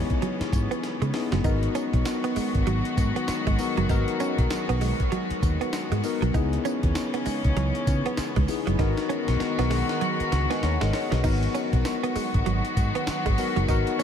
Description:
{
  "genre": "R&B, new jack swing",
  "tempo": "98 BPM",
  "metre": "4/4",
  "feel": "swing 60% on 16ths",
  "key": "G# minor",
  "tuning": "A4 = 440 Hz",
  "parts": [
    { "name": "bell-like tine electric piano", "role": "accompaniment", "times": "0.0-14.0 s", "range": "B3 to G#5", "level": "-30 LUFS", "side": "left 6 dB", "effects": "wide subtle chorus" },
    { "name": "warm studio string section", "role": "sustained chords", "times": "0.0-14.0 s", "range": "C#3 to A#4", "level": "-30 LUFS", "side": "left 1 dB", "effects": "none" },
    { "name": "direct-recorded clean electric guitar", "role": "riff", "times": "0.0-14.0 s", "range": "F#3 to D#4", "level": "-31 LUFS", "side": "right 7 dB", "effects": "analog chorus" },
    { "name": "breakbeat sampler-style drum kit", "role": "drums", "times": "0.1-14.0 s", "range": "crash cymbal, hi-hat, kick drum, snare drum, tambourine", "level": "-29 LUFS", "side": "equal", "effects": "none" },
    { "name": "vintage muted fingered electric bass", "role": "bass", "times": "0.4-13.8 s", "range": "F#1 to C#3", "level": "-26 LUFS", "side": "equal", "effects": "none" }
  ],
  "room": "moderate huge ambient reverb, RT60 8.2 s",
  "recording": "dreamy mix soaked in reverb",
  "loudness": "-22 LUFS",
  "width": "side -8 dB against mid",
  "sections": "0.0-11.2 A section; 11.2-14.0 A section",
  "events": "drum fill 0.8-1.4, 8.8-11.2",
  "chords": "0.0 C#m7; 1.4 G#m7; 6.3 C#m7; 8.8 G#m9; 11.2 G#m7"
}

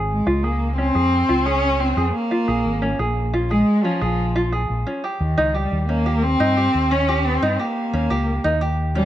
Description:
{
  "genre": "folktronica",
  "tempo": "88 BPM",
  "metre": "4/4",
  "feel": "straight",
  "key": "unclear",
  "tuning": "A4 = 440 Hz",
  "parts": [
    { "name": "tenor ukulele", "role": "arpeggios", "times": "0.0-9.1 s", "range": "Db4 to Ab4", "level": "-24 LUFS", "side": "equal", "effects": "low-pass filter, tape echo" },
    { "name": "fingered electric bass", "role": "bass", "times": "0.0-9.1 s", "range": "Ab1 to G2", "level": "-22 LUFS", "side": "equal", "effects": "none" },
    { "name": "warm cello", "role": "melody", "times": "0.1-9.1 s", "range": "Eb3 to Db4", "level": "-21 LUFS", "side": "equal", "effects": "none" }
  ],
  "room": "light reverb, studio reverb",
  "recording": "none",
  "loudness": "-18 LUFS",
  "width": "side -12 dB against mid",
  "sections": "0.0-9.1 A section",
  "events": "none",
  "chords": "0.0 Dbmaj7; 2.1 Bb7(no3); 4.9 Eb7"
}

